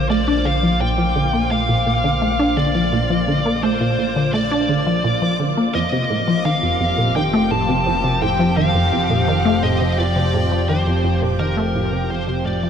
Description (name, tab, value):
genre	ambient, sequencer-driven space music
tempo	85 BPM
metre	4/4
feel	straight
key	Bb major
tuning	A4 = 440 Hz
part	high-gain lead guitar	melody	0.0-12.7 s	Bb4 to A5	-22 LUFS	left 1 dB	distortion, ping-pong delay
part	sweeping resonant pad	sustained chords	0.0-12.7 s	F3 to G5	-25 LUFS	right 1 dB	chorus
part	resonant blip pluck	riff	0.0-12.7 s	F2 to D4	-19 LUFS	equal	chorus, ping-pong delay
part	fat analog bass	bass	0.0-12.7 s	F1 to Bb1	-24 LUFS	equal	none
part	bubbling stepped-filter texture	texture	0.0-12.7 s	D6	-31 LUFS	equal	chorus, built-in reverb
room	moderate huge ambient reverb, RT60 8.3 s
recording	none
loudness	-16 LUFS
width	side -8 dB against mid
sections	0.0-12.7 A section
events	fade-in on analog synth pad 0.0-12.7; fade-out 9.5-12.7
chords	0.0 Bb; 5.7 Fsus2